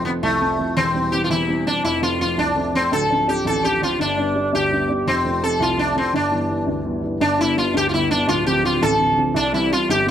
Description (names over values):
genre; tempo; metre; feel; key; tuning
celtic folk; 112 BPM (dotted quarters); 6/8; straight; G mixolydian; A4 = 436 Hz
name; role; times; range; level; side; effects
sitar; melody; 0.0-10.1 s; A3 to A4; -19 LUFS; equal; none
dark upright piano; accompaniment; 0.0-10.1 s; D1 to D4; -22 LUFS; equal; none
room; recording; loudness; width
moderate spring reverb, RT60 1.7 s; close, detailed microphones; -17 LUFS; side -10 dB against mid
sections
0.0-7.2 A section; 7.2-10.1 B section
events
none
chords
0.0 F; 0.8 C/E; 1.8 F; 2.9 Dm7; 4.0 G; 5.1 F; 6.1 G6; 7.2 G; 8.3 Dm7; 9.4 C